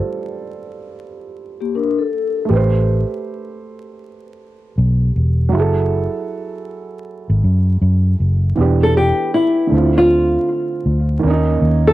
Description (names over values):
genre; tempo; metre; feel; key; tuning
hip hop; 79 BPM; 4/4; swing 64% on 16ths; unclear; A4 = 441 Hz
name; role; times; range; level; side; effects
dark upright piano; accompaniment; 0.0-11.9 s; D3 to C5; -22 LUFS; right 4 dB; low-pass filter, cassette tape
vibraphone with soft mallets; second line; 1.6-2.5 s; Bb3 to Bb4; -20 LUFS; left 7 dB; low-pass filter, cassette tape, analog delay
vintage muted fingered electric bass; bass; 2.5-11.9 s; E1 to F#2; -15 LUFS; equal; none
nylon-string guitar; melody; 8.8-11.9 s; E4 to A4; -15 LUFS; left 1 dB; low-pass filter
room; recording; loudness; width
light reverb; home recording on cassette, vinyl crackle; -14 LUFS; side -16 dB against mid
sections
0.0-8.6 A section; 8.6-11.9 B section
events
none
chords
0.0 Gm9; 2.5 Am9; 5.5 F#m9; 8.6 Em7; 9.7 Dm7; 11.2 D#5